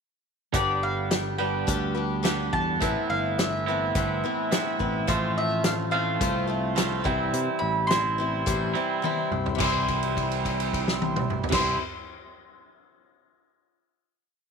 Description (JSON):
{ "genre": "folk rock and heartland rock", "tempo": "106 BPM", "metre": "4/4", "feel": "straight", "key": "C major", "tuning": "A4 = 435 Hz", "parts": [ { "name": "picked swing-style acoustic guitar", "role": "accompaniment", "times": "0.5-11.8 s", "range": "A2 to C5", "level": "-31 LUFS", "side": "left 12 dB", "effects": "none" }, { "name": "twangy electric guitar", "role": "riff", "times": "0.5-11.8 s", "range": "G2 to G4", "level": "-29 LUFS", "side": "right 14 dB", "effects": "none" }, { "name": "picked electric bass", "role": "bass", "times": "0.5-11.8 s", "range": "G1 to C3", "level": "-31 LUFS", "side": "left 1 dB", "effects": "none" }, { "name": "natural country drum kit", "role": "drums", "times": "0.5-11.7 s", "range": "crash cymbal, hi-hat, kick drum, snare drum, toms", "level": "-28 LUFS", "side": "left 1 dB", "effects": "none" }, { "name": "mandolin", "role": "melody", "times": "0.6-11.8 s", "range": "C5 to C6", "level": "-29 LUFS", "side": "equal", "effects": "none" }, { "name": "pedal harmonium", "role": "sustained chords", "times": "5.1-11.8 s", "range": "C4 to C5", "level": "-38 LUFS", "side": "right 2 dB", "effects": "none" } ], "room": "light reverb", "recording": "1960s-style stereo with parts hard left and right", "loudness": "-23 LUFS", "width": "side -6 dB against mid", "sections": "0.5-9.6 verse; 9.6-11.9 final chord", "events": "drum fill 9.0-9.6; held note 9.6-11.5", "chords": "0.5 G; 2.8 Amadd9; 5.1 F/A; 7.1 C" }